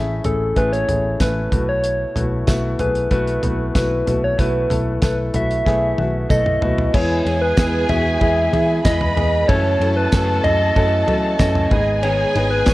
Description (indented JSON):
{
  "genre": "piano-driven pop",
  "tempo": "94 BPM",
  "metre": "4/4",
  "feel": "straight",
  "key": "E major",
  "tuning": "A4 = 440 Hz",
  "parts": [
    { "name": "soft struck synth lead", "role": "melody", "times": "0.0-12.7 s", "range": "A4 to E5", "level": "-20 LUFS", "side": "equal", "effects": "chorus" },
    { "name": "warm upright piano", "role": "accompaniment", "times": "0.0-12.7 s", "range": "G#2 to C#5", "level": "-23 LUFS", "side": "left 2 dB", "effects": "none" },
    { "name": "vintage muted picked electric bass", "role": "bass", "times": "0.0-12.7 s", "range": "G#1 to F#3", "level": "-22 LUFS", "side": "equal", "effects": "none" },
    { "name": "damped 70s drum kit", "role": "drums", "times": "0.2-12.7 s", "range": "crash cymbal, hi-hat, kick drum, ride cymbal, snare drum, toms", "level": "-21 LUFS", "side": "equal", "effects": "none" },
    { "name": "tambourine", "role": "percussion", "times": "1.2-12.7 s", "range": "none", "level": "-37 LUFS", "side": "right 4 dB", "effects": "none" },
    { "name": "dark studio violin section", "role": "second line", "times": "6.9-12.7 s", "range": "G#4 to B5", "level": "-25 LUFS", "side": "equal", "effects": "ping-pong delay" },
    { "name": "fingerpicked plugged-in steel-string acoustic guitar", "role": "riff", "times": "6.9-12.7 s", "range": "F#2 to A4", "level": "-26 LUFS", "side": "right 3 dB", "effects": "none" }
  ],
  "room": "light reverb, small room ambience",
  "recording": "worn, warbling old tape, cassette tape, warbly pitch drift",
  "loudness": "-16 LUFS",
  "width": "side -18 dB against mid",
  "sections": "0.0-6.9 A section; 6.9-12.7 B section",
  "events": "drum fill 5.7-6.9",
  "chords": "0.0 Amaj7; 1.5 B7sus4; 6.9 E; 9.5 F#m7; 11.7 G#m",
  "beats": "0.56 1.20 | 1.84 2.48 3.12 3.75 | 4.39 5.03 5.66 6.30 | 6.94 7.58 8.21 8.85 | 9.49 10.12 10.76 11.40 | 12.04 12.67"
}